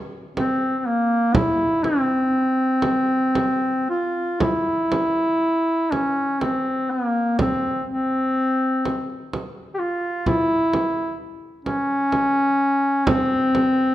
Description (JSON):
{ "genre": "caucasian folk, Caucasian lament", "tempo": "57-65 BPM", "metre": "3/4", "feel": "rubato", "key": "unclear", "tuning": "A4 = 440 Hz", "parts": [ { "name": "warm duduk", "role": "melody", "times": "0.4-13.9 s", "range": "Bb3 to G4", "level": "-19 LUFS", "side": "equal", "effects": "none" }, { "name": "frame drum", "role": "percussion", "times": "0.4-13.8 s", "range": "none", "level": "-26 LUFS", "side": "right 2 dB", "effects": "none" } ], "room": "wet recital hall reverb, RT60 1.8 s", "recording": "dark, warm production", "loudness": "-19 LUFS", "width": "side -13 dB against mid", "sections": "0.0-4.4 A section; 4.4-13.9 B section", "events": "none", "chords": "none" }